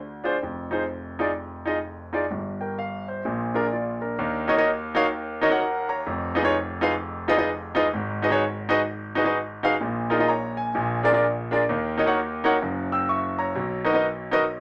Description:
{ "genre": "gospel", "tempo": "128 BPM", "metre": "4/4", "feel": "swing 63% on 8ths", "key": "Eb minor from 4.2 s", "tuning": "A4 = 441 Hz", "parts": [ { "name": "clear concert grand piano", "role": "solo", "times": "0.0-14.6 s", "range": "F1 to Fb6", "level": "-25 LUFS", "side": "equal", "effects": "none" } ], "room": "moderate small room reverb, RT60 0.5 s", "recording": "none", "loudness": "-25 LUFS", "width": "mono", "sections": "0.0-4.2 A section; 4.2-14.6 B section", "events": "none", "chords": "0.4 Fm7; 2.3 N.C.; 3.2 Bb; 4.2 Ebm7; 6.1 Fm7b5; 7.9 Abm7; 9.8 Bb7sus4; 10.7 Bb7; 11.7 Ebm7; 12.6 N.C.; 13.6 Bmaj7" }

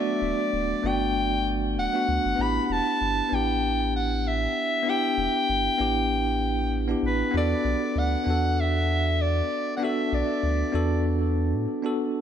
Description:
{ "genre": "sunset chillout", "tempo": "97 BPM", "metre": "4/4", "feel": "swing 56% on 16ths", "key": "unclear", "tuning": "A4 = 440 Hz", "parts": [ { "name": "breathy soprano saxophone", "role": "melody", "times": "0.0-11.1 s", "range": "B4 to B5", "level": "-27 LUFS", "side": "left 2 dB", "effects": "analog delay" }, { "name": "bell-like tine electric piano", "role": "accompaniment", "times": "0.0-12.2 s", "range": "F#3 to A4", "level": "-27 LUFS", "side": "right 1 dB", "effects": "auto-pan, analog delay" }, { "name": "round analog bass", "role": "bass", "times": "0.2-11.7 s", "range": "D1 to A2", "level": "-27 LUFS", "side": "equal", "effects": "none" } ], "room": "moderate plate reverb, RT60 3.3 s", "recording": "dreamy mix soaked in reverb", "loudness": "-22 LUFS", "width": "side -9 dB against mid", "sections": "0.0-12.2 A section", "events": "break 11.7-12.2", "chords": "0.0 Gmaj9; 2.4 A9sus4; 7.3 E9sus4" }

